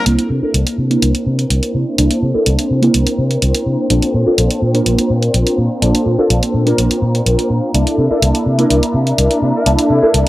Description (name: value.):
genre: filtered disco house.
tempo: 125 BPM.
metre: 4/4.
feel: straight.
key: unclear.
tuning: A4 = 444 Hz.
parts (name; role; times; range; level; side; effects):
bright trumpet section; melody; 0.0-0.1, 9.5-10.0 s; E4 to Bb4; -21 LUFS; left 2 dB; low-pass filter, tape echo.
funky polysynth comp; accompaniment; 0.0-10.3 s; Bb3 to Bb4; -16 LUFS; equal; chorus, phaser, low-pass filter.
warm studio string section; sustained chords; 0.0-10.3 s; C4 to E5; -22 LUFS; left 1 dB; vintage 12-bit sampler grit, low-pass filter.
fingered electric bass; bass; 0.1-10.2 s; Bb1 to C3; -15 LUFS; equal; low-pass filter.
electronic hi-hat; drums; 0.1-10.3 s; none; -19 LUFS; right 1 dB; none.
room: light reverb.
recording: dry, gritty hardware recording, transformer saturation.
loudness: -12 LUFS.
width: side -16 dB against mid.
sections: 0.1-10.3 A section.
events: filter sweep 0.1-10.3.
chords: 0.1 C13; 3.9 Bbmaj9; 7.7 C13.